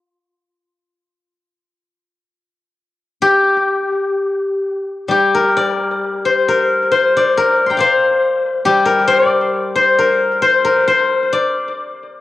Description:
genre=chinese traditional, Chinese solo plucked strings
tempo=62-71 BPM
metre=2/4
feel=rubato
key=G yu mode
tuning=A4 = 440 Hz
part: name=steel-string zither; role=solo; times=0.0-12.2 s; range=G3 to C6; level=-13 LUFS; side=left 2 dB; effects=cassette tape, analog delay
room=moderate spring reverb, RT60 1.2 s, studio reverb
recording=home recording on cassette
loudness=-12 LUFS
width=side -14 dB against mid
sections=0.0-5.1 A section; 5.1-12.2 B section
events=none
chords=none

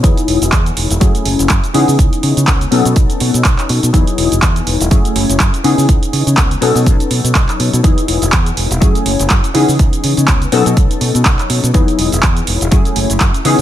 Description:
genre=filtered disco house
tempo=123 BPM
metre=4/4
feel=swing 56% on 16ths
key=E major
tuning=A4 = 440 Hz
part: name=funky polysynth comp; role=accompaniment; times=0.0-13.6 s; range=E3 to A4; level=-16 LUFS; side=left 3 dB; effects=chorus, phaser, sidechain pumping, low-pass filter
part: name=modern bright fingered electric bass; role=bass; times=0.0-13.6 s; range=E1 to C#3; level=-16 LUFS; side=equal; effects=sidechain pumping, low-pass filter
part: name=electronic kick drum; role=drums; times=0.0-13.3 s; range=none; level=-12 LUFS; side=equal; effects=none
part: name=punchy analog drum machine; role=drums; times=0.0-13.6 s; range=handclaps, hi-hat, shaker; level=-18 LUFS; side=right 2 dB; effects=sidechain pumping on hats, sidechain pumping on perc
part: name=tambourine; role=percussion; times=0.0-13.6 s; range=none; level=barely audible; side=none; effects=none
room=little or no reverb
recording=none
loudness=-10 LUFS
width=side -12 dB against mid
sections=0.0-13.6 A section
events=filter sweep 0.0-13.6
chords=0.0 Emaj9; 1.0 F#m9; 1.7 C#m7; 2.7 B9; 3.9 Emaj9; 4.9 F#m9; 5.6 C#m7; 6.6 B9; 7.8 Emaj9; 8.8 F#m9; 9.5 C#m7; 10.5 B9; 11.7 Emaj9; 12.7 F#m9

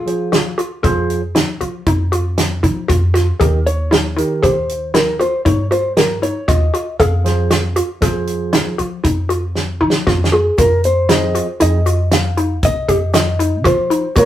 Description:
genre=progressive instrumental, band music in an uneven meter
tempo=117 BPM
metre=7/4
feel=straight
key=F minor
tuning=A4 = 443 Hz
part: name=hollow-body jazz guitar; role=melody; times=0.0-14.3 s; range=F4 to F5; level=-18 LUFS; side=left 1 dB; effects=none
part: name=hollow square pluck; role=arpeggios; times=0.0-14.3 s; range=Eb4 to Ab4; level=-19 LUFS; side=left 1 dB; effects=chorus
part: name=upright bass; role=bass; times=0.0-14.3 s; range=C2 to F3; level=-19 LUFS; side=equal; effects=none
part: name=barky tine electric piano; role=accompaniment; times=0.1-14.3 s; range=Db3 to Eb5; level=-20 LUFS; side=right 3 dB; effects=overdrive
part: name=natural country drum kit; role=drums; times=0.1-14.3 s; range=hi-hat, kick drum, snare drum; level=-17 LUFS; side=equal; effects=none
part: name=tube shaker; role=percussion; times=10.6-14.3 s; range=none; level=-35 LUFS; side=right 4 dB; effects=none
room=moderate studio reverb, RT60 0.6 s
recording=rough rehearsal-room recording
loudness=-13 LUFS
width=side -12 dB against mid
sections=0.0-10.6 A section; 10.6-14.3 B section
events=drum fill 9.6-10.6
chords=0.0 Fm; 3.4 Eb; 7.0 Fm; 10.6 Fm7

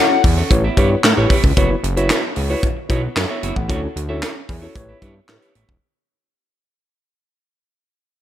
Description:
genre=early-eighties boogie funk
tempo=113 BPM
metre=4/4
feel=straight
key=unclear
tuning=A4 = 441 Hz
part: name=mellow tine electric piano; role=accompaniment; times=0.0-5.5 s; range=E4 to F#5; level=-23 LUFS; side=left 1 dB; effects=none
part: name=clean electric guitar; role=riff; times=0.0-5.7 s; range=B3 to E5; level=-26 LUFS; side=right 5 dB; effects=wide subtle chorus, slapback echo
part: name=fat analog bass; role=bass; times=0.2-5.8 s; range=E1 to A2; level=-20 LUFS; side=equal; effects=none
part: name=tight funk drum kit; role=drums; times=0.2-5.8 s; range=handclaps, hi-hat, kick drum, snare drum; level=-18 LUFS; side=equal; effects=none
room=light reverb, small room ambience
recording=none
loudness=-15 LUFS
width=side -11 dB against mid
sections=0.0-1.6 A section; 1.6-5.8 B section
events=fade-out 1.6-5.8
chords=0.0 Dmaj7 (rootless); 0.5 A9; 1.6 F#7sus4; 3.7 Dmaj7; 4.8 A9

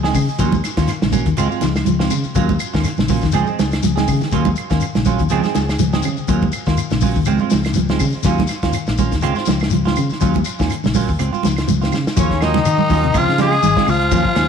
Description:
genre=afrobeat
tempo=122 BPM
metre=4/4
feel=swing 56% on 16ths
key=Eb dorian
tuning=A4 = 439 Hz
part: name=clean electric guitar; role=arpeggios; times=0.0-14.3 s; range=C3 to Gb3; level=-23 LUFS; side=left 14 dB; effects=none
part: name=semi-hollow electric guitar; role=stabs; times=0.0-14.5 s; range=F3 to Ab4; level=-22 LUFS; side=right 9 dB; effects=lush chorus, tape echo
part: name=fingered electric bass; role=bass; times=0.0-14.5 s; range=Ab1 to Eb3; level=-20 LUFS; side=left 1 dB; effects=none
part: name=warm soul drum kit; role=drums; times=0.0-14.5 s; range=hi-hat, kick drum, snare drum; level=-22 LUFS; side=left 1 dB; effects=none
part: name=shekere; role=percussion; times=0.0-14.5 s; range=none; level=-27 LUFS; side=left 8 dB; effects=none
part: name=congas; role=percussion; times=0.1-14.3 s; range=none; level=-22 LUFS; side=right 11 dB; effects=none
part: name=claves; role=percussion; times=0.2-14.5 s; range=none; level=-33 LUFS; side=right 9 dB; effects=none
part: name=raspy tenor saxophone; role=melody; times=12.2-14.5 s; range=Db4 to Ab4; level=-18 LUFS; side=left 2 dB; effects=none
part: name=bright trumpet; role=second line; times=12.2-14.5 s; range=Db5 to Ab5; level=-25 LUFS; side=right 10 dB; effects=none
part: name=clear bassoon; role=second line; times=12.2-14.5 s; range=Db3 to Ab3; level=-24 LUFS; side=left 14 dB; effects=none
room=light reverb, small room reverb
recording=1960s-style stereo with parts hard left and right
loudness=-15 LUFS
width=side -7 dB against mid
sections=0.0-12.2 A section; 12.2-14.5 B section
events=drum fill 4.0-4.3, 11.9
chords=0.4 Ebm9; 1.4 Dbmaj7; 2.4 Ebm9; 3.3 Dbmaj7; 4.3 Ebm9; 5.3 Dbmaj7; 6.3 Ebm9; 7.3 Dbmaj7; 8.2 Ebm9; 9.2 Dbmaj7; 10.2 Ebm9; 11.2 Dbmaj7; 12.2 Ebm9; 13.1 Dbmaj7

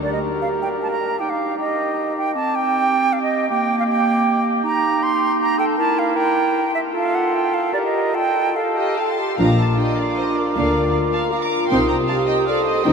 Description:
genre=classical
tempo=156 BPM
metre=3/4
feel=rubato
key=G minor, Bb major from 4.6 s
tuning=A4 = 439 Hz
part: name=bright clarinet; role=second line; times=0.0-12.9 s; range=Bb3 to A4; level=-24 LUFS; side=right 3 dB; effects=none
part: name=bright concert flute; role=second line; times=0.0-12.9 s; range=D5 to Eb6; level=-21 LUFS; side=right 4 dB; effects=none
part: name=mellow cor anglais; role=second line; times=0.0-12.9 s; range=G4 to C5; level=-25 LUFS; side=left 4 dB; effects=none
part: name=warm symphonic violin section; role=melody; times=8.8-12.9 s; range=D5 to D6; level=-29 LUFS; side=equal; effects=none
part: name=rich symphonic violin section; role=second line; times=8.8-12.9 s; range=Bb4 to Bb5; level=-30 LUFS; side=left 2 dB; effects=none
part: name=dark symphonic viola section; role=accompaniment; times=9.4-12.9 s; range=F3 to Eb4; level=-24 LUFS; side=right 1 dB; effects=none
part: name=dark French horn section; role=sustained chords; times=9.4-12.9 s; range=D4 to Bb4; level=-24 LUFS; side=left 1 dB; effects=none
part: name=dark symphonic cello section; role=bass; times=9.4-12.9 s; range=Bb2 to Eb3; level=-29 LUFS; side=left 2 dB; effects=none
part: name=warm symphonic double bass section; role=bass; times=9.4-12.9 s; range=Bb1 to Eb2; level=-25 LUFS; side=left 1 dB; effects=none
room=wet huge ambient reverb, RT60 7.6 s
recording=in a vast, echoing space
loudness=-17 LUFS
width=side -6 dB against mid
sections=0.0-9.4 A section; 9.4-12.9 B section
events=none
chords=0.0 Gm; 1.2 Eb; 2.4 C5; 3.5 Gm/Bb; 4.6 Eb; 5.8 Edim; 7.0 F; 7.7 Gm; 8.1 F; 9.4 Bb; 10.6 Bb/D; 11.7 Cm

